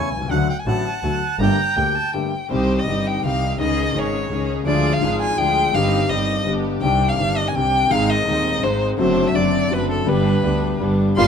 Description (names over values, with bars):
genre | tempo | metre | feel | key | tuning
tango | 166 BPM | 3/4 | rubato | C minor | A4 = 440 Hz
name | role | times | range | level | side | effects
bandoneon | melody | 0.0-2.1, 11.2-11.3 s | F5 to G5 | -23 LUFS | right 3 dB | none
warm violin | second line | 0.0-11.3 s | A4 to C6 | -22 LUFS | left 2 dB | none
clear concert grand piano | accompaniment | 0.0-11.3 s | Eb1 to Ab4 | -21 LUFS | left 3 dB | none
rich double bass | bass | 0.0-11.3 s | F#1 to Eb2 | -25 LUFS | right 3 dB | none
rich symphonic string section | stabs | 2.5-11.3 s | F#3 to Ab4 | -26 LUFS | right 4 dB | none
room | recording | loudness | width
moderate studio reverb, RT60 0.8 s | minimal, uncompressed stereo recording | -17 LUFS | side -7 dB against mid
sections
0.0-2.5 A section; 2.5-11.2 B section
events
break 2.1-2.5; violin solo 2.5-11.2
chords
0.3 D; 1.4 Gmadd9; 2.5 Cm; 3.6 Dbsus2; 4.7 Ddim; 5.7 Cm/G; 6.5 G; 6.8 Cmadd9; 7.9 Ab; 9.0 D7/F#; 10.1 G